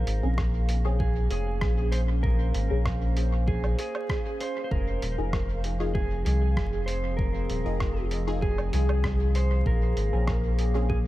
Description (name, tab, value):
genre	ambient dub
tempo	97 BPM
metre	4/4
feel	straight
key	Bb minor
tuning	A4 = 440 Hz
part	clean lap steel guitar	melody	0.0-11.0 s	Ab4 to C5	-34 LUFS	right 2 dB	dub echo
part	warbly tape-like pad	sustained chords	0.0-11.1 s	F3 to F5	-35 LUFS	right 1 dB	chorus, built-in reverb
part	soft dub sub bass	bass	0.0-11.1 s	Eb1 to C2	-25 LUFS	equal	tube saturation
part	lo-fi sampler-style drum kit	drums	0.1-10.7 s	hi-hat, rim click, woodblock	-39 LUFS	right 1 dB	dub echo
part	filtered dub chord stab	stabs	0.2-10.9 s	C4 to Ab4	-37 LUFS	left 2 dB	phaser, vintage 12-bit sampler grit, dub echo
part	electronic kick drum	drums	0.4-11.0 s	none	-30 LUFS	equal	none
room	little or no reverb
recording	vinyl crackle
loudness	-24 LUFS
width	side -16 dB against mid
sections	0.0-11.1 A section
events	none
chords	0.0 Bbm9; 4.7 Fm7; 9.7 Bbm9